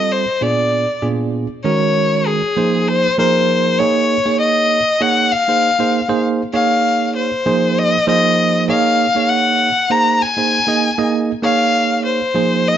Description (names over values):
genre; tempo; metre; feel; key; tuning
jazz; 98 BPM; 4/4; swing 53% on 16ths; Eb dorian; A4 = 440 Hz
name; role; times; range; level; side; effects
clear violin; melody; 0.0-12.8 s; Ab4 to Bb5; -15 LUFS; left 3 dB; none
bell-like tine electric piano; accompaniment; 0.0-12.8 s; Bb2 to Eb5; -17 LUFS; right 5 dB; fast stereo tremolo
room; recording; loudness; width
moderate large studio reverb, RT60 1.0 s, small room ambience; nothing above 7.7 kHz; -13 LUFS; side -10 dB against mid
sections
0.0-1.6 A section; 1.6-12.8 B section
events
none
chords
0.4 Bb7b9; 1.6 Ebm7; 2.6 Fm7; 3.8 Eb5; 5.3 Abadd9; 6.5 Ebsus2; 7.5 Fm7; 8.7 Ebm9; 10.2 Abadd9; 11.4 Ebsus2